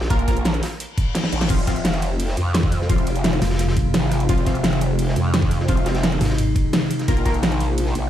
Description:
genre	dark technical drum and bass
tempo	172 BPM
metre	4/4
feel	straight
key	F minor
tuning	A4 = 439 Hz
part	growl bass	bass	0.0-8.1 s	F1 to F2	-23 LUFS	equal	chorus, overdrive, sidechain pumping
part	crunchy breakbeat drum kit	drums	0.0-8.0 s	hi-hat, snare drum	-32 LUFS	left 1 dB	high-pass filter on hats, high-pass filter on snare, high-pass filter on room
part	orchestra-hit-like synth stab	stabs	0.1-7.3 s	F3 to Bb4	-27 LUFS	left 1 dB	built-in reverb, digital delay
part	dubstep drum kit	drums	0.1-8.0 s	crash cymbal, hi-hat, ride cymbal, snare drum	-24 LUFS	right 1 dB	overdrive
part	electronic kick drum	drums	0.1-7.3 s	none	-20 LUFS	equal	none
part	reverse cymbal	sound effects	0.9-1.5 s	none	-32 LUFS	left 5 dB	none
part	metallic inharmonic drone	sustained chords	2.3-8.1 s	C3 to F4	-24 LUFS	equal	chorus, built-in reverb, sidechain pumping
part	pulsing pluck wobble bass	bass	3.4-3.9, 6.2-6.5 s	F1 to Ab1	-20 LUFS	equal	chorus
room	little or no reverb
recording	played on a big sound system in a bare room, large studio reverb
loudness	-18 LUFS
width	side -11 dB against mid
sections	0.0-8.1 A section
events	reverse cymbal 0.9-1.5; drum fill 1.2-1.5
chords	0.0 Bb5; 1.5 Fm; 7.1 Bbm

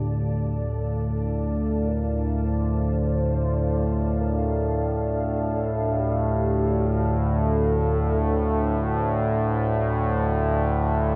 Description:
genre	dark ambient drone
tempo	free time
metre	none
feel	none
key	D minor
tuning	A4 = 439 Hz
part	mellow horn-like synth lead	melody	0.0-9.5 s	G4 to C5	-34 LUFS	equal	tremolo, lush chorus, analog delay
part	deep dark ambient pad	sustained chords	0.0-11.2 s	D4 to A5	-35 LUFS	equal	chorus, built-in reverb
part	analog drone	drone	0.0-11.2 s	D2 to A2	-25 LUFS	equal	chorus
room	moderate plate reverb, RT60 3.2 s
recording	dreamy mix soaked in reverb, cassette tape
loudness	-24 LUFS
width	mono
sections	0.0-11.2 A section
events	fade-in on ambient pad 0.0-11.2; fade-in on soft synth lead 0.0-11.2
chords	0.0 Dm

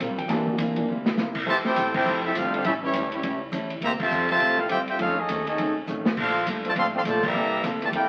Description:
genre	jazz, big band swing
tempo	204 BPM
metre	4/4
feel	swing 62% on 8ths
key	F major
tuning	A4 = 438 Hz
part	archtop guitar, miked and amplified	accompaniment	0.0-8.1 s	F2 to Bb4	-35 LUFS	equal	none
part	upright bass	bass	0.0-8.1 s	F1 to A2	-38 LUFS	equal	none
part	vintage drum kit	drums	0.0-8.0 s	crash cymbal, hi-hat, kick drum, ride cymbal, snare drum	-33 LUFS	equal	none
part	warm grand piano	accompaniment	0.2-0.9 s	E3 to A5	-28 LUFS	equal	none
part	warm trombone section	sustained chords	0.3-0.7 s	E3 to G4	-39 LUFS	equal	none
part	clear trumpet section	melody	1.5-8.1 s	A3 to C6	-27 LUFS	equal	none
part	clear trombone section	second line	1.5-8.1 s	Bb2 to G4	-30 LUFS	equal	none
room	wet studio reverb, RT60 0.6 s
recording	very old 78 rpm record, vinyl crackle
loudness	-25 LUFS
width	mono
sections	0.0-1.5 A section; 1.5-8.1 B section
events	grand piano solo 0.0-1.5; drum fill 0.9, 5.9; band accent 1.9, 4.0, 7.2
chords	0.3 C7; 1.5 Fmaj9; 2.6 A7; 3.8 Dm11; 5.0 F7alt; 6.2 Bbmaj9#11; 7.3 C13

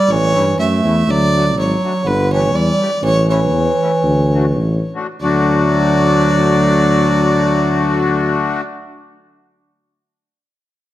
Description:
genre	alpine folk, alpine dance band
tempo	90-124 BPM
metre	2/4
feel	swing 55% on 8ths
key	D major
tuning	A4 = 437 Hz
part	rich fiddle	melody	0.0-8.6 s	B4 to E5	-18 LUFS	right 1 dB	none
part	warm clarinet	second line	0.0-8.6 s	D3 to A3	-18 LUFS	right 2 dB	none
part	mellow tuba	bass	0.1-8.6 s	G1 to G2	-17 LUFS	left 1 dB	none
part	accordion	accompaniment	0.3-8.6 s	A3 to G4	-20 LUFS	left 5 dB	none
room	moderate recital hall reverb, RT60 1.5 s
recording	dark, warm production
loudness	-12 LUFS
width	side -14 dB against mid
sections	0.0-5.2 A section; 5.2-7.8 B section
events	slowing down 3.0-5.2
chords	0.1 A; 1.1 D; 2.1 Gsus2; 3.0 A; 4.0 D

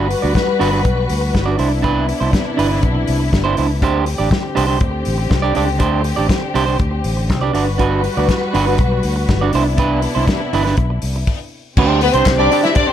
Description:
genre	disco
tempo	121 BPM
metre	4/4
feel	straight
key	unclear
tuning	A4 = 440 Hz
part	electric guitar at the edge of break-up	accompaniment	0.0-12.9 s	D4 to D5	-19 LUFS	right 6 dB	none
part	dark studio string section	sustained chords	0.0-12.9 s	C3 to B4	-22 LUFS	left 2 dB	none
part	fingered electric bass	bass	0.0-12.5 s	G1 to D2	-19 LUFS	left 1 dB	none
part	warm soul drum kit	drums	0.1-12.9 s	crash cymbal, hi-hat, kick drum, snare drum	-20 LUFS	left 1 dB	none
part	warm studio violin section	second line	12.0-12.9 s	B3 to E5	-14 LUFS	left 2 dB	none
part	group handclap	percussion	12.3-12.4 s	none	-27 LUFS	left 10 dB	none
room	light reverb, studio ambience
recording	none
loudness	-14 LUFS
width	side -10 dB against mid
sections	0.0-11.8 A section; 11.8-12.9 B section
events	stop 11.3-11.8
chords	0.0 Gmaj7; 1.6 Cmaj9; 3.8 D7sus4; 7.5 Gmaj7; 9.5 Cmaj9; 11.8 D7sus4

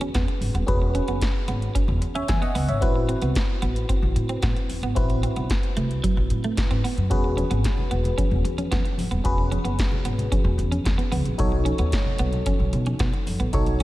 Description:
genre	early-eighties boogie funk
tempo	112 BPM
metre	4/4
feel	straight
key	E major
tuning	A4 = 442 Hz
part	FM electric piano	accompaniment	0.0-13.8 s	C4 to G#5	-29 LUFS	left 1 dB	chorus, phaser
part	clean electric guitar	riff	0.0-13.8 s	F#3 to C#4	-31 LUFS	right 3 dB	wide subtle chorus
part	upright bass	bass	0.0-13.8 s	D#1 to B2	-25 LUFS	equal	none
part	electro analog drum machine	drums	0.0-13.8 s	hi-hat, kick drum, snare drum	-25 LUFS	equal	none
part	congas	percussion	7.1-13.8 s	none	-33 LUFS	left 1 dB	none
room	light reverb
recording	none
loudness	-21 LUFS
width	side -16 dB against mid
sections	0.0-13.8 A section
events	none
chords	0.0 E69; 2.8 Am6; 7.1 E69; 11.4 B9

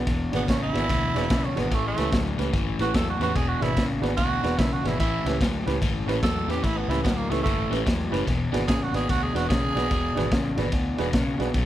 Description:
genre	electric blues shuffle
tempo	146 BPM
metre	4/4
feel	swing 64% on 8ths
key	E mixolydian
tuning	A4 = 440 Hz
part	crunchy overdriven guitar	riff	0.0-11.7 s	E2 to F#3	-28 LUFS	left 3 dB	none
part	vintage muted fingered electric bass	bass	0.0-11.7 s	E1 to E2	-30 LUFS	equal	none
part	crunchy breakbeat drum kit	drums	0.1-11.7 s	kick drum, ride cymbal, snare drum	-27 LUFS	equal	none
part	dark upright piano	accompaniment	0.3-11.5 s	C#4 to B4	-30 LUFS	right 4 dB	none
part	growling tenor saxophone	second line	0.4-10.7 s	A3 to A4	-28 LUFS	right 4 dB	none
room	light reverb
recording	faint mains hum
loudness	-22 LUFS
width	side -13 dB against mid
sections	0.0-11.7 A section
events	tenor saxophone solo 0.0-11.7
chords	0.0 E7; 1.7 A7; 3.4 E7; 5.0 A7; 8.3 E7

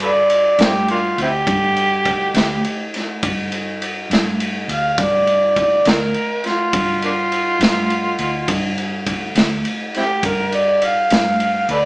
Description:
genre	slow blues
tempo	69 BPM (dotted quarters)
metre	12/8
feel	straight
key	unclear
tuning	A4 = 440 Hz
part	mellow harmonica	second line	0.0-11.9 s	Bb3 to F5	-16 LUFS	equal	overdrive
part	vintage muted fingered electric bass	bass	0.0-11.9 s	D2 to G2	-26 LUFS	equal	none
part	raw garage drum kit	drums	0.0-11.8 s	kick drum, ride cymbal, snare drum	-19 LUFS	equal	none
room	wet large studio reverb, RT60 0.9 s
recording	band playing live in one room, small speaker sound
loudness	-15 LUFS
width	side -24 dB against mid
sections	0.0-11.9 A section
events	harmonica solo 0.0-11.9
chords	0.0 G7(no3)

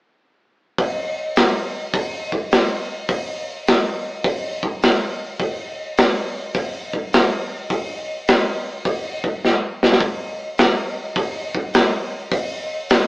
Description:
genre	rock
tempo	104 BPM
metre	4/4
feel	swing 67% on 8ths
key	none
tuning	none
part	big rock drum kit	drums	0.8-13.1 s	hi-hat, kick drum, snare drum	-18 LUFS	equal	none
room	light reverb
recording	rough rehearsal-room recording, AM radio sound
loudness	-18 LUFS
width	side -23 dB against mid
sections	0.8-13.1 A section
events	drum fill 9.4-10.0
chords	none

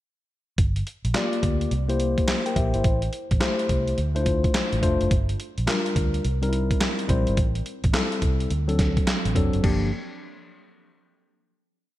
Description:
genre	R&B, new jack swing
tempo	106 BPM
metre	4/4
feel	swing 64% on 16ths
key	G dorian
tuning	A4 = 440 Hz
part	vintage muted fingered electric bass	bass	0.6-9.9 s	F1 to D2	-25 LUFS	equal	none
part	dusty soul sampler-style drum kit	drums	0.6-9.8 s	crash cymbal, handclaps, hi-hat, kick drum, snare drum	-24 LUFS	equal	gated reverb
part	mellow tine electric piano	accompaniment	1.1-9.9 s	F3 to G5	-26 LUFS	left 2 dB	none
room	light reverb, digital ambience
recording	bright 1980s-style digital production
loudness	-21 LUFS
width	side -15 dB against mid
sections	0.6-9.6 verse; 9.6-11.9 final chord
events	none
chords	0.6 Gm7; 1.7 C7; 2.8 Am7; 4.0 Dm7; 5.1 Gm7; 6.2 C7; 7.4 Am7; 8.5 D7; 9.6 Gm7

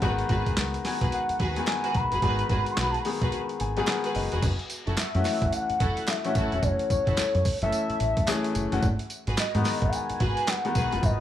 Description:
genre	R&B, new jack swing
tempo	109 BPM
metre	4/4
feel	swing 61% on 16ths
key	unclear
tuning	A4 = 439 Hz
part	clear baby grand piano	accompaniment	0.0-11.2 s	D#3 to G#5	-30 LUFS	left 4 dB	none
part	warm symphonic string section	stabs	0.0-10.9 s	E4 to B4	-34 LUFS	right 2 dB	none
part	deep dub fingered electric bass	bass	0.0-11.2 s	E1 to G#2	-29 LUFS	equal	none
part	boom bap sampler-style drum kit	drums	0.0-11.2 s	crash cymbal, handclaps, hi-hat, kick drum, snare drum, tambourine	-29 LUFS	equal	none
part	group handclap	percussion	0.6-10.6 s	none	-42 LUFS	right 4 dB	none
part	warm velvety synth lead	melody	0.9-11.2 s	C#5 to C#6	-29 LUFS	left 1 dB	chorus, tape echo
room	little or no reverb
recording	none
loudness	-24 LUFS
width	side -11 dB against mid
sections	0.0-4.4 A section; 4.4-11.2 B section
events	break 3.3-4.4; grand piano fill 3.3-4.4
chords	0.0 G#m7; 4.4 F#m7; 8.8 G#m7

